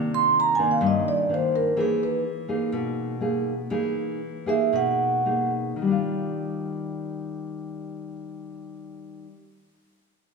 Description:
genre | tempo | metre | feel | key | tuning
bossa nova | 108-127 BPM | 4/4 | straight | Eb major | A4 = 440 Hz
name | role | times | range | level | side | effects
nylon-string guitar | accompaniment | 0.0-9.4 s | G2 to G#4 | -26 LUFS | left 1 dB | none
vibraphone with soft mallets | melody | 0.1-5.5 s | G#4 to C6 | -22 LUFS | right 3 dB | none
room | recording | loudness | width
wet recital hall reverb, RT60 1.8 s | recorded in a church or concert hall | -22 LUFS | side -4 dB against mid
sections
0.0-5.8 A section; 5.8-10.3 B section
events
vibraphone solo 0.0-5.8; slowing down 1.8-5.8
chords
0.0 Cm9; 1.8 Emaj7#11; 5.8 Ebmaj9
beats
0.34 0.81 1.29 | 1.76 2.24 2.72 3.20 | 3.70 4.20 4.72 5.25 | 5.80 6.36 6.91 7.47 | 8.03 8.59 9.14

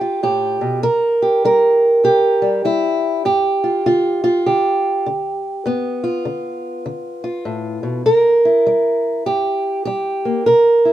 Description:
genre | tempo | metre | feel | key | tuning
acoustic country blues, solo or duo | 100 BPM | 4/4 | swing 62% on 8ths | unclear | A4 = 440 Hz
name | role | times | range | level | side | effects
fingerpicked old ladder-braced acoustic guitar | solo | 0.0-10.9 s | G2 to Bb4 | -14 LUFS | right 1 dB | none
room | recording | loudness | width
light reverb | minimal, uncompressed stereo recording | -14 LUFS | side -12 dB against mid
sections
0.0-10.9 A section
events
none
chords
0.0 G7; 0.8 C7; 3.2 G7; 8.1 C7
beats
0.23 | 0.83 1.44 2.04 2.64 | 3.24 3.84 4.45 5.05 | 5.65 6.25 6.85 7.45 | 8.05 8.65 9.25 9.86 | 10.46

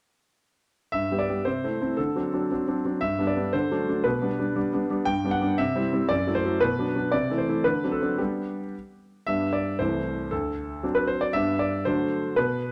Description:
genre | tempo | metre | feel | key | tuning
classical-period piano sonatina | 116 BPM | 2/4 | straight | G major | A4 = 440 Hz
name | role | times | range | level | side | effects
clear concert grand piano | solo | 0.9-12.7 s | C2 to G5 | -26 LUFS | equal | none
room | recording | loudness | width
moderate recital hall reverb, RT60 1.3 s | close, detailed microphones | -26 LUFS | mono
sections
0.9-9.3 A section; 9.3-12.7 A section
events
none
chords
0.9 G; 1.5 Am/C; 2.0 D7; 3.0 G; 3.5 D; 4.1 G/B; 5.1 G; 5.6 C; 6.1 F#m7b5; 6.6 Bm; 7.1 Am/C; 7.7 D7; 8.2 G; 9.8 Am/C; 10.3 D7; 11.3 G; 11.9 D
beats
| 0.94 1.47 | 1.99 2.51 | 3.02 3.54 | 4.05 4.56 | 5.07 5.59 | 6.11 6.62 | 7.13 7.65 | 8.19 8.74 | 9.28 9.80 | 10.32 10.84 | 11.35 11.87 | 12.37

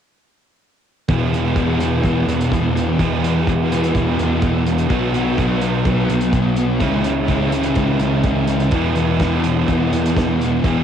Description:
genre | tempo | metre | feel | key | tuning
rock, shoegaze and dream pop | 126 BPM | 4/4 | straight | E major | A4 = 441 Hz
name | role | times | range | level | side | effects
overdriven electric guitar | riff | 1.1-10.8 s | E2 to G#4 | -20 LUFS | right 11 dB | reverse reverb
thick fuzz guitar | riff | 1.1-10.8 s | E2 to C#4 | -20 LUFS | left 8 dB | distortion, analog chorus
picked electric bass | bass | 1.1-10.8 s | B1 to E2 | -22 LUFS | equal | none
loose indie drum kit | drums | 1.1-10.8 s | hi-hat, kick drum, snare drum | -24 LUFS | equal | cassette tape
room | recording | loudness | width
little or no reverb | home recording on cassette | -15 LUFS | side -8 dB against mid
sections
1.1-10.8 A section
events
none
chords
1.1 E; 4.9 B; 6.8 C#m; 8.7 E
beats
| 1.10 1.57 2.05 2.52 | 3.00 3.48 3.95 4.43 | 4.91 5.38 5.86 6.34 | 6.81 7.29 7.77 8.25 | 8.73 9.20 9.68 10.16 | 10.64

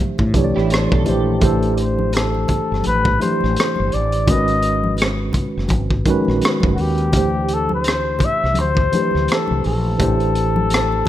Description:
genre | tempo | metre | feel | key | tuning
R&B, neo-soul | 84 BPM | 4/4 | swing 58% on 16ths | A minor | A4 = 440 Hz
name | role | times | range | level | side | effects
tine electric piano | accompaniment | 0.0-11.1 s | D#3 to E5 | -21 LUFS | right 2 dB | medium stereo tremolo
mellow fretless electric bass | bass | 0.2-11.0 s | F#1 to A2 | -21 LUFS | equal | none
crunchy breakbeat drum kit | drums | 0.2-10.9 s | hi-hat, kick drum, rim click | -20 LUFS | equal | none
congas | percussion | 0.2-11.1 s | none | -27 LUFS | left 1 dB | none
electric guitar at the edge of break-up | second line | 0.6-1.4 s | E4 to C5 | -26 LUFS | right 7 dB | analog chorus
breathy flugelhorn | melody | 1.1-11.1 s | F#4 to E5 | -21 LUFS | left 4 dB | slapback echo
room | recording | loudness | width
light reverb, studio ambience | rough home demo mix | -15 LUFS | side -12 dB against mid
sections
0.0-1.4 A section; 1.4-11.1 B section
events
none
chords
0.0 Am7; 4.3 G#m7; 7.1 Dsus2; 10.0 Am7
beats
0.71 | 1.42 2.14 2.85 3.56 | 4.28 4.99 5.71 6.42 | 7.14 7.85 8.56 9.28 | 9.99 10.71

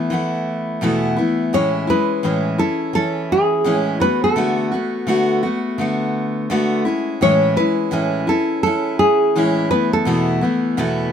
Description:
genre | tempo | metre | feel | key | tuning
acoustic pop | 84 BPM | 4/4 | swing 60% on 16ths | A major | A4 = 441 Hz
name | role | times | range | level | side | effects
nylon-string guitar | melody | 0.0-11.1 s | G#4 to C#5 | -18 LUFS | equal | none
picked steel-string acoustic guitar | accompaniment | 0.0-11.1 s | E2 to F#4 | -18 LUFS | left 1 dB | none
room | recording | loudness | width
light reverb | minimal, uncompressed stereo recording | -16 LUFS | side -8 dB against mid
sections
0.0-11.1 A section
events
none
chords
0.0 Esus4; 1.5 Amaj7; 4.0 D6; 6.9 Amaj7; 9.7 Esus4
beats
0.10 0.81 | 1.53 2.24 2.95 3.66 | 4.37 5.08 5.79 6.50 | 7.21 7.92 8.64 9.35 | 10.06 10.77

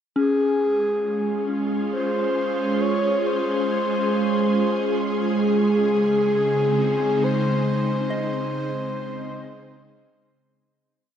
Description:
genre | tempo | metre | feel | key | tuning
ambient | free time | none | none | Db major | A4 = 440 Hz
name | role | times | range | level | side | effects
wind-like tuned noise texture | texture | 1.0-10.8 s | Ab4 to C6 | -36 LUFS | equal | built-in reverb, analog chorus
breathy flute-like synth lead | melody | 0.2-9.8 s | Ab4 to Db5 | -24 LUFS | equal | chorus, diffuse ambient delay
ethereal airy pad | sustained chords | 0.8-10.7 s | Db3 to Ab4 | -23 LUFS | right 1 dB | ensemble chorus, built-in reverb
soft synth bell | arpeggios | 0.2-10.8 s | Db4 to Eb5 | -29 LUFS | left 3 dB | chorus, phaser, diffuse ambient delay
room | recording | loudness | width
wet plate reverb, RT60 3.1 s | dreamy mix soaked in reverb | -20 LUFS | side -9 dB against mid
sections
0.2-10.7 A section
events
fade-out on synth texture 0.2-10.7; fade-out 7.2-10.7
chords
0.2 Dbmaj7; 5.4 Ab/Db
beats
free time

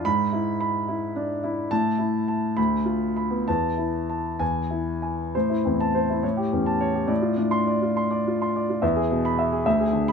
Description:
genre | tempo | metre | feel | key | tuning
classical, romantic character piece for solo piano | 63-74 BPM (dotted quarters) | 6/8 | rubato | A minor | A4 = 440 Hz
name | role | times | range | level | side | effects
warm concert grand piano | solo | 0.0-10.1 s | D2 to C6 | -22 LUFS | equal | none
room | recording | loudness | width
little or no reverb | close, detailed microphones | -22 LUFS | side -6 dB against mid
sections
0.0-5.3 A section; 5.3-10.1 B section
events
none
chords
0.1 E7/G#; 1.7 A5; 2.6 Bdim/D; 3.5 Esus4; 4.4 E; 5.3 Am; 6.2 A7; 7.1 Dm7/A; 8.8 E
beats
| 0.06 0.87 | 1.71 2.57 | 3.47 4.41 | 5.34 6.23 | 7.10 7.97 | 8.82 9.65

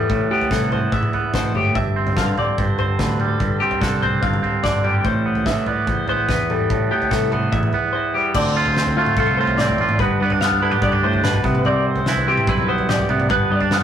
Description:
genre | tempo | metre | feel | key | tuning
math rock and midwest emo | 145 BPM | 4/4 | straight | A minor | A4 = 440 Hz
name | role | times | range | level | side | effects
twangy electric guitar | accompaniment | 0.0-13.8 s | E2 to G4 | -20 LUFS | right 3 dB | none
twelve-string electric guitar | arpeggios | 0.0-13.8 s | F4 to F5 | -23 LUFS | left 4 dB | none
overdriven fingered electric bass | bass | 0.0-13.8 s | G1 to A2 | -24 LUFS | left 1 dB | none
loose indie drum kit | drums | 0.1-13.8 s | crash cymbal, kick drum, snare drum, toms | -23 LUFS | equal | none
room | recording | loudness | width
moderate stone room reverb, RT60 1.2 s | rough rehearsal-room recording | -16 LUFS | side -9 dB against mid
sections
0.0-8.4 A section; 8.4-13.8 B section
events
none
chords
0.0 Am9; 1.8 G7sus4; 5.0 Am9; 8.4 Dm7; 10.0 G7; 11.4 Cmaj7; 13.3 G7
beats
| 0.10 0.51 0.93 1.34 | 1.75 2.16 2.58 2.99 | 3.40 3.81 4.22 4.64 | 5.05 5.46 5.88 6.29 | 6.70 7.12 7.53 7.94 | 8.35 8.77 9.18 9.59 | 10.00 10.41 10.83 11.24 | 11.65 12.06 12.48 12.89 | 13.30 13.72

